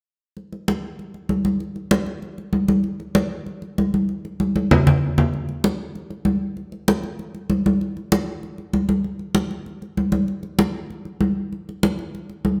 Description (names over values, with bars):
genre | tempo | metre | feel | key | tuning
latin | 194 BPM | 4/4 | straight | none | none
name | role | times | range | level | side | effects
congas | percussion | 0.4-12.6 s | none | -22 LUFS | equal | none
room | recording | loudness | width
wet large studio reverb, RT60 1.4 s | none | -22 LUFS | mono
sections
0.4-5.3 A section; 5.3-12.6 B section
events
drum fill 4.4-5.3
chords
none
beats
| 0.36 0.67 0.98 1.30 | 1.61 1.92 2.23 2.54 | 2.85 3.16 3.47 3.78 | 4.09 4.40 4.71 5.02 | 5.33 5.64 5.95 6.26 | 6.57 6.88 7.19 7.50 | 7.81 8.12 8.43 8.74 | 9.05 9.36 9.66 9.97 | 10.28 10.59 10.90 11.21 | 11.52 11.83 12.14 12.45